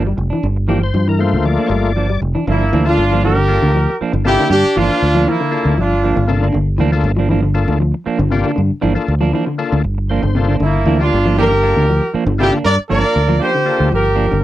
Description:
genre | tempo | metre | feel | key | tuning
afrobeat | 118 BPM | 4/4 | straight | G dorian | A4 = 435 Hz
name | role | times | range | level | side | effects
clean electric guitar | stabs | 0.0-14.4 s | F3 to D4 | -21 LUFS | right 5 dB | slapback echo
fingered electric bass | bass | 0.0-14.4 s | F1 to G2 | -16 LUFS | equal | none
electric guitar at the edge of break-up | arpeggios | 0.1-14.4 s | C3 to G3 | -20 LUFS | left 3 dB | none
overdriven tonewheel organ | accompaniment | 0.7-13.9 s | A3 to D5 | -20 LUFS | left 5 dB | chorus vibrato
warm horn section | melody | 2.5-6.3, 10.6-14.4 s | E4 to D5 | -17 LUFS | equal | none
clear trumpet | second line | 2.5-6.3, 10.7-14.4 s | Bb3 to Bb4 | -21 LUFS | right 3 dB | none
room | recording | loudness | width
little or no reverb | dry, close 1970s-style studio recording | -13 LUFS | side -14 dB against mid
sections
0.0-2.5 A section; 2.5-14.4 B section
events
tonewheel organ solo 0.0-2.5; tonewheel organ fill 9.8-10.6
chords
0.0 Gm7

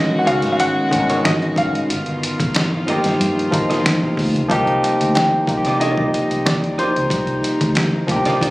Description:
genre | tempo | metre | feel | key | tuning
R&B, neo-soul | 92 BPM | 4/4 | swing 54% on 16ths | C minor from 4.5 s | A4 = 438 Hz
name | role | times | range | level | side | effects
warm grand piano | melody | 0.0-8.0 s | C5 to G5 | -22 LUFS | equal | none
barky tine electric piano | accompaniment | 0.0-8.5 s | Eb3 to G4 | -19 LUFS | equal | overdrive
warm studio string section | sustained chords | 0.0-8.5 s | Cb3 to Gb4 | -26 LUFS | equal | none
vintage muted fingered electric bass | bass | 0.0-8.5 s | G1 to C3 | -25 LUFS | equal | none
electric guitar through a small old amp | second line | 0.3-8.5 s | Cb4 to D#5 | -25 LUFS | right 2 dB | none
dusty soul sampler-style drum kit | drums | 0.3-8.5 s | hi-hat, kick drum, snare drum | -22 LUFS | equal | none
room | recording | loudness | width
light reverb | recorded on a phone in the room, club reverb, compression | -15 LUFS | side -19 dB against mid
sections
0.0-4.5 A section; 4.5-8.5 B section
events
none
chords
0.0 Abm11; 1.9 G7alt; 4.5 Cm11

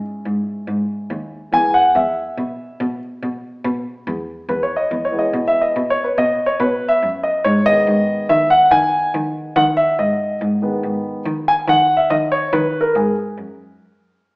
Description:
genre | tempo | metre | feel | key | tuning
progressive instrumental, band music in an uneven meter | 142 BPM | 7/4 | straight | unclear | A4 = 439 Hz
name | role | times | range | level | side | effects
dark concert grand piano | accompaniment | 0.0-13.2 s | D#3 to G#5 | -15 LUFS | equal | none
warm cello | bass | 0.0-14.4 s | D#2 to D#3 | -22 LUFS | equal | none
room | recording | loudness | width
wet large studio reverb, RT60 1.3 s | band playing live in one room, small speaker sound | -15 LUFS | side -25 dB against mid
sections
0.0-13.4 A section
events
grand piano solo 0.0-13.4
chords
0.0 C#m; 1.5 E; 7.5 G#m; 13.4 N.C.

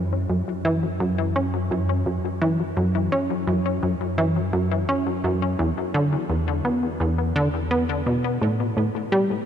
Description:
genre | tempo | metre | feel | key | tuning
ambient, sequencer-driven space music | 85 BPM | 4/4 | straight | unclear | A4 = 441 Hz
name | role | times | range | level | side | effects
plucky analog bass | riff | 0.0-9.3 s | E2 to C#4 | -21 LUFS | equal | ping-pong delay
analog drone | bass | 0.1-8.4 s | E2 to F#2 | -31 LUFS | right 1 dB | chorus
room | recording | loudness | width
moderate huge ambient reverb, RT60 8.4 s | none | -21 LUFS | side -9 dB against mid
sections
0.0-8.4 A section; 8.4-9.5 B section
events
filter sweep on analog synth bass 0.0-8.4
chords
0.0 F#5; 5.6 E5; 8.4 N.C.

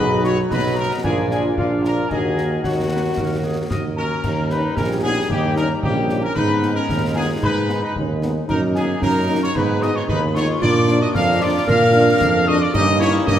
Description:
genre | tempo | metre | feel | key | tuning
military-style march for wind band | 113 BPM | 2/4 | straight | Eb minor | A4 = 440 Hz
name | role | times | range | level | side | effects
mellow trumpet section | melody | 0.0-13.4 s | F4 to F5 | -24 LUFS | left 1 dB | none
clear woodwind section | second line | 0.0-13.4 s | Bb3 to D#5 | -26 LUFS | left 2 dB | none
mellow euphonium | second line | 0.0-13.4 s | A#3 to Ab4 | -26 LUFS | right 3 dB | none
mellow wooden piccolo | second line | 0.0-13.4 s | F5 to F6 | -28 LUFS | left 4 dB | none
warm French horn section | accompaniment | 0.0-13.1 s | F3 to Gb4 | -27 LUFS | left 4 dB | none
warm trombone section | sustained chords | 0.0-13.4 s | Eb3 to Eb4 | -29 LUFS | right 2 dB | none
warm tuba | bass | 0.0-13.4 s | Bb1 to Bb2 | -21 LUFS | right 2 dB | none
concert snare drum, concert bass drum and clash cymbals | drums | 0.2-13.4 s | none | -26 LUFS | equal | none
room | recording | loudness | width
wet concert hall reverb, RT60 2.1 s | none | -16 LUFS | side -10 dB against mid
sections
0.0-4.2 A section; 4.2-13.4 A section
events
none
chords
0.0 B; 1.0 Bb; 2.1 Ebm; 4.2 Eb7; 6.4 Abm; 8.5 Ebm/Gb; 9.6 Abm; 10.6 Bb; 12.7 D#7/G

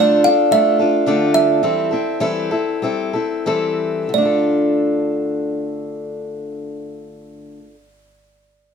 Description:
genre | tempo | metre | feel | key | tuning
acoustic folk duo or small band | 86-112 BPM | 4/4 | straight | D minor | A4 = 441 Hz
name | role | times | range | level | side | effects
kalimba | melody | 0.0-7.5 s | D5 to F5 | -18 LUFS | right 4 dB | none
picked steel-string acoustic guitar | accompaniment | 0.0-7.8 s | D3 to A4 | -19 LUFS | left 3 dB | none
room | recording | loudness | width
wet large studio reverb, RT60 0.9 s | faint mains hum | -15 LUFS | side -6 dB against mid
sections
0.0-4.2 A section; 4.2-8.7 B section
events
slowing down 0.0-4.2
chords
0.0 Dm; 1.6 C6/E; 4.2 Dm

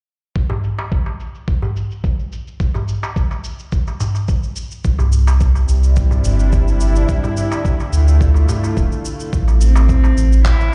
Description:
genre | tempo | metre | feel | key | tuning
organic downtempo | 107 BPM | 4/4 | swing 53% on 16ths | A minor | A4 = 440 Hz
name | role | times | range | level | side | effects
electronic kick drum | drums | 0.4-10.6 s | none | -21 LUFS | equal | none
electronic shaker and handclaps | drums | 0.4-10.7 s | none | -34 LUFS | equal | low-pass filter on perc, low-pass filter on snare, low-pass filter on room
darbuka | percussion | 0.5-10.1 s | none | -26 LUFS | equal | none
bowed-like drone | sustained chords | 5.5-9.3 s | C3 to F4 | -27 LUFS | equal | built-in reverb, sidechain pumping
warm sub bass | bass | 4.8-10.7 s | D1 to D2 | -15 LUFS | equal | sidechain pumping
warm cello | melody | 9.6-10.7 s | C4 to E4 | -24 LUFS | equal | none
room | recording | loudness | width
light reverb | played on a big sound system in a bare room, large studio reverb | -17 LUFS | mono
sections
0.4-9.3 A section; 9.3-10.7 B section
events
none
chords
0.4 N.C.; 4.8 C; 7.1 Dm; 9.3 Am

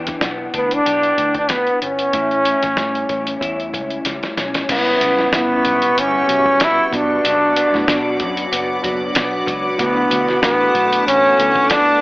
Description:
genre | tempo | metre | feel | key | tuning
indie pop, bedroom pop | 94 BPM | 4/4 | swing 55% on 16ths | unclear | A4 = 440 Hz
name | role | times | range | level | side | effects
electric guitar through a small old amp | accompaniment | 0.0-12.0 s | A2 to G4 | -23 LUFS | left 1 dB | ensemble chorus, vibrato effect
vintage muted fingered electric bass | bass | 0.0-11.9 s | F#1 to B2 | -32 LUFS | equal | none
lo-fi sampler-style drum kit | drums | 0.1-11.9 s | crash cymbal, hi-hat, kick drum, snare drum | -21 LUFS | equal | none
bright trombone | melody | 0.6-12.0 s | B3 to E4 | -15 LUFS | equal | analog chorus, slapback echo
reed electric piano | accompaniment | 4.7-12.0 s | F#3 to A4 | -26 LUFS | right 1 dB | fast tremolo, cassette tape
granular cloud pad | sustained chords | 5.5-12.0 s | G3 to D6 | -24 LUFS | equal | built-in reverb
room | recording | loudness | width
moderate spring reverb, RT60 1.6 s | AM radio sound | -14 LUFS | side -21 dB against mid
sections
0.0-4.7 A section; 4.7-12.0 B section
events
drum fill 4.1-4.7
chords
0.0 Em7; 2.1 A7; 4.7 C#m7b5; 6.9 Bm; 9.8 D6

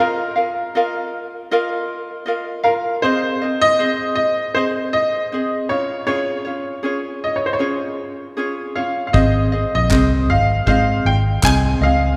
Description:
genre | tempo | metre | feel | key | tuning
acoustic pop | 79 BPM | 4/4 | swing 60% on 16ths | Ab major | A4 = 440 Hz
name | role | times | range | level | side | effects
bright upright piano | melody | 0.0-12.2 s | Bb4 to Ab5 | -22 LUFS | equal | none
ukulele | accompaniment | 0.0-12.2 s | C4 to F5 | -23 LUFS | equal | none
vintage muted fingered electric bass | bass | 9.1-12.1 s | Ab1 to Ab2 | -20 LUFS | equal | none
loose indie drum kit | drums | 9.1-11.6 s | handclaps, kick drum | -23 LUFS | equal | none
room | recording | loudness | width
wet church reverb, RT60 2.8 s | recorded in a church or concert hall | -19 LUFS | mono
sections
0.0-12.2 A section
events
none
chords
0.0 Ebsus2; 3.0 Ab; 5.7 Db; 9.1 Ab

